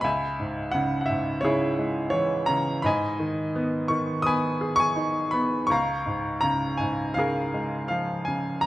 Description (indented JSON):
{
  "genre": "classical, lyrical solo piano",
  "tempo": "84 BPM",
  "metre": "4/4",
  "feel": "rubato",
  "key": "unclear",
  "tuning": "A4 = 441 Hz",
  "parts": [
    { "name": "bright baby grand piano", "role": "solo", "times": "0.0-8.7 s", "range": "C#2 to D#6", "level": "-23 LUFS", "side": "equal", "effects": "none" }
  ],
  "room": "moderate recital hall reverb, RT60 1.4 s",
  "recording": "none",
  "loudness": "-23 LUFS",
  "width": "side -16 dB against mid",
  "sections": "0.0-8.7 A section",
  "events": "none",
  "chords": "0.0 C#m7; 2.9 G#m; 5.7 C#6",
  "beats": "| 0.04 0.75 1.44 2.14 | 2.85 3.56 4.27 4.98 | 5.71 6.44 7.17 7.90 | 8.65"
}